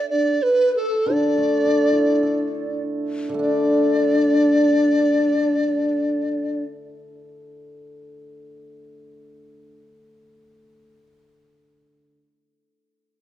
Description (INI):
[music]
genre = chinese traditional, Chinese chamber ensemble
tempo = 50-63 BPM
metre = 4/4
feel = rubato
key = unclear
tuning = A4 = 439 Hz
[part]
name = mellow hollow large dizi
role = melody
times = 0.0-6.6 s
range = A4 to D5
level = -22 LUFS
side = right 2 dB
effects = none
[part]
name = mellow hollow xiao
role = second line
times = 0.1-6.6 s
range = D4 to B4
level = -20 LUFS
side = left 2 dB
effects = none
[part]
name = hammered dulcimer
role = accompaniment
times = 1.1-12.1 s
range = D3 to A4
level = -27 LUFS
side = equal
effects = none
[sound]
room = light reverb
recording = dark, warm production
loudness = -17 LUFS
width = side -12 dB against mid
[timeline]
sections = 0.0-3.4 A section; 3.4-8.1 B section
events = slowing down 0.0-3.4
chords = none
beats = 0.09 1.09 2.21 | 3.40 4.57 5.74 6.91